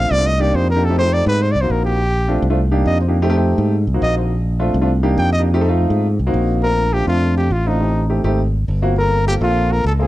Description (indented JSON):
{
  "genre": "Afro-Cuban jazz",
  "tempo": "206 BPM",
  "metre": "4/4",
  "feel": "straight",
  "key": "Bb major",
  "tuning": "A4 = 440 Hz",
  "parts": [
    { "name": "clear trumpet", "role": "melody", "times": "0.0-10.1 s", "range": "Eb4 to G5", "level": "-20 LUFS", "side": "equal", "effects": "plate reverb" },
    { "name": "warm grand piano", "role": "accompaniment", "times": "0.0-10.1 s", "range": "A3 to A4", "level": "-20 LUFS", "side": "equal", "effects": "none" },
    { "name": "modern bright fingered electric bass", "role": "bass", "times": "0.0-10.1 s", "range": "G1 to Ab2", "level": "-17 LUFS", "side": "equal", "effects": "none" }
  ],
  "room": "light reverb",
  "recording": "dark, warm production",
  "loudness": "-14 LUFS",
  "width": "side -16 dB against mid",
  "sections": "0.0-6.6 A section; 6.6-10.1 B section",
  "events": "trumpet solo 0.0-6.6",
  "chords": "0.3 Cm7; 0.8 F7; 1.4 Ab7; 2.0 Bbmaj7; 2.6 Cm7; 3.1 F7; 3.7 Ab7; 4.3 Bbmaj7; 4.9 Cm7; 5.5 F7; 6.0 Ab7; 6.6 Bbmaj9; 7.8 Am7b5; 8.4 Ab13; 9.0 Gm11"
}